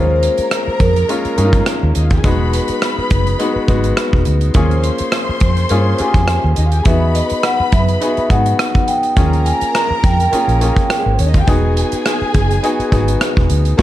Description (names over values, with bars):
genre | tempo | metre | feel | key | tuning
lush 1970s-style soul | 104 BPM | 4/4 | swing 54% on 16ths | unclear | A4 = 440 Hz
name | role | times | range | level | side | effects
vibraphone with soft mallets | melody | 0.0-1.6, 6.0-11.2 s | Bb4 to Bb5 | -18 LUFS | equal | slapback echo
warm studio string section | second line | 0.0-13.8 s | Ab3 to C6 | -23 LUFS | left 1 dB | none
bright grand piano | accompaniment | 0.0-13.8 s | Ab3 to Ab4 | -20 LUFS | left 2 dB | none
vintage muted fingered electric bass | bass | 0.0-13.8 s | E1 to G#2 | -16 LUFS | equal | none
modern studio drum kit | drums | 0.2-13.8 s | crash cymbal, hi-hat, kick drum, rim click, snare drum | -17 LUFS | equal | none
room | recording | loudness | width
small room ambience | dark, warm production | -12 LUFS | side -14 dB against mid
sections
0.0-13.8 A section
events
none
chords
0.0 Eb7sus4; 2.2 Emaj7; 4.5 Eb7sus4; 6.9 Emaj7; 9.2 Eb7sus4; 11.5 Emaj7